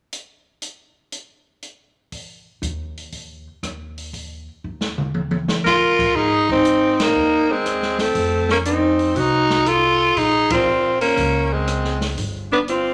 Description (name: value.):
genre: jazz, small-group swing and bop.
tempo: 120 BPM.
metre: 4/4.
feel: swing 68% on 8ths.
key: Ab major.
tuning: A4 = 438 Hz.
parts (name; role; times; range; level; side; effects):
open jazz drum kit; drums; 0.1-12.8 s; crash cymbal, hi-hat, kick drum, ride cymbal, rim click, snare drum, toms; -29 LUFS; equal; none.
upright bass; bass; 2.6-12.9 s; G1 to F2; -30 LUFS; equal; none.
bright alto saxophone; second line; 5.6-12.9 s; C4 to Bb4; -23 LUFS; equal; none.
growling tenor saxophone; melody; 5.7-12.9 s; Ab3 to F4; -20 LUFS; equal; none.
room: moderate large studio reverb, RT60 1.4 s.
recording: none.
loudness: -19 LUFS.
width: mono.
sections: 0.1-2.1 A section; 2.1-6.1 B section; 6.1-12.9 C section.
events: drum fill 4.6-5.6; band accent 6.9, 10.4.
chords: 0.1 N.C.; 5.1 Eb5; 6.1 Ab; 8.2 F7b9; 10.2 Bbm9; 12.2 G5.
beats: | 0.12 0.62 1.13 1.63 | 2.13 2.63 3.13 3.64 | 4.14 4.64 5.14 5.64 | 6.14 6.65 7.15 7.65 | 8.15 8.65 9.16 9.66 | 10.16 10.66 11.16 11.67 | 12.17 12.67.